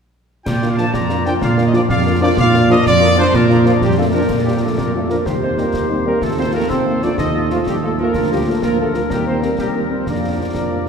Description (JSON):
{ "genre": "military-style march for wind band", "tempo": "125 BPM (dotted quarters)", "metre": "6/8", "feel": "straight", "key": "Bb major", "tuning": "A4 = 440 Hz", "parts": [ { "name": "dark trumpet section", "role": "melody", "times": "0.4-10.9 s", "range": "F4 to Bb5", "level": "-21 LUFS", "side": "equal", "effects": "none" }, { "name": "warm woodwind section", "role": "second line", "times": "0.5-10.9 s", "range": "Bb3 to D5", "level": "-24 LUFS", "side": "left 2 dB", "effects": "none" }, { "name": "dark tuba", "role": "bass", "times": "0.5-10.9 s", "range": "D2 to Bb2", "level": "-18 LUFS", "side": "right 1 dB", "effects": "none" }, { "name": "concert snare drum, clash cymbals and concert bass drum", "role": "drums", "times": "0.5-10.9 s", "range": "none", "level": "-25 LUFS", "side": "left 2 dB", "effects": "none" }, { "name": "warm French horn section", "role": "accompaniment", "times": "0.6-10.8 s", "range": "F3 to F4", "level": "-24 LUFS", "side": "left 3 dB", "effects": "none" }, { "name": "mellow trombone section", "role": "sustained chords", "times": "0.8-10.9 s", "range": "F3 to D4", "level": "-25 LUFS", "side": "right 1 dB", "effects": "none" }, { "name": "mellow euphonium", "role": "second line", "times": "3.7-10.9 s", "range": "F3 to Eb4", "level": "-22 LUFS", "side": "right 2 dB", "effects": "none" } ], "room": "wet cathedral reverb, RT60 4.3 s", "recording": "recorded in a church or concert hall", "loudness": "-14 LUFS", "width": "side -6 dB against mid", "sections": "0.5-4.3 A section; 4.3-10.9 B section", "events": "none", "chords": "0.5 Bb; 5.3 Cm/Eb; 6.2 F7/Eb; 8.1 Bb/D; 9.1 Cm7/Eb; 10.1 Bb/F" }